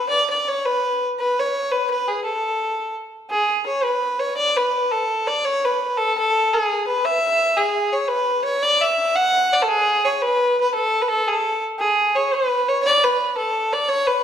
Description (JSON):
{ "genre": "celtic folk", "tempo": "113 BPM (dotted quarters)", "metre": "6/8", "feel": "straight", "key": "unclear", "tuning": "A4 = 440 Hz", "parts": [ { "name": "warm fiddle", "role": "solo", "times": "0.0-14.2 s", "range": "G#4 to F#5", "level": "-18 LUFS", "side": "equal", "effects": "none" } ], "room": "wet recital hall reverb, RT60 1.6 s", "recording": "recorded in a church or concert hall", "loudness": "-18 LUFS", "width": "side -9 dB against mid", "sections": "0.0-3.3 A section; 3.3-11.8 B section; 11.8-14.2 B section", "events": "none", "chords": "none", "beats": "| 0.10 0.64 | 1.17 1.71 | 2.24 2.78 | 3.31 3.84 | 4.38 4.91 | 5.44 5.97 | 6.50 7.03 | 7.56 8.09 | 8.62 9.15 | 9.68 10.21 | 10.74 11.27 | 11.79 12.32 | 12.85 13.38 | 13.91" }